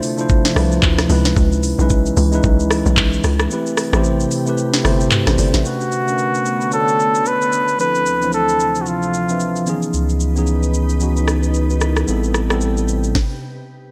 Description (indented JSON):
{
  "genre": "amapiano",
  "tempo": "112 BPM",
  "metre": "4/4",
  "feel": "swing 58% on 16ths",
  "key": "unclear",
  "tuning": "A4 = 440 Hz",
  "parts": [
    { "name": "mellow tine electric piano", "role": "accompaniment", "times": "0.0-13.2 s", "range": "D#3 to E5", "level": "-23 LUFS", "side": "equal", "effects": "none" },
    { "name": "glassy FM pad", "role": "sustained chords", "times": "0.0-13.1 s", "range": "D2 to B4", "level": "-27 LUFS", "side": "equal", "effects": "ensemble chorus, built-in reverb" },
    { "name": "smooth R&B drum kit", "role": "drums", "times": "0.0-13.3 s", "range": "handclaps, hi-hat, kick drum, rim click, shaker, snare drum, toms", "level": "-22 LUFS", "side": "equal", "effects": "vintage 12-bit sampler grit" },
    { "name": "hollow log drum bass", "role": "bass", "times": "0.6-5.6 s", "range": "G1 to D2", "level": "-19 LUFS", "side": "equal", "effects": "none" },
    { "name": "trumpet with bucket mute", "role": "melody", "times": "5.7-9.7 s", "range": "F4 to B4", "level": "-20 LUFS", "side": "equal", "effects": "tape echo" },
    { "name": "saturated sub bass", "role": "bass", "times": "9.9-13.1 s", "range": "A1 to C#2", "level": "-20 LUFS", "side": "equal", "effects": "none" }
  ],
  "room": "light reverb, digital ambience",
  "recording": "none",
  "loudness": "-17 LUFS",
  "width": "mono",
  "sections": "0.0-5.7 A section; 5.7-13.9 B section",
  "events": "drop 0.0-5.7; kick muted 3.5-5.7; stop 13.2-13.9",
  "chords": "0.0 Dm9; 1.1 C#m9; 3.5 Am9; 5.7 Bm9; 7.8 Dm9; 9.7 C#m9; 12.1 Am9"
}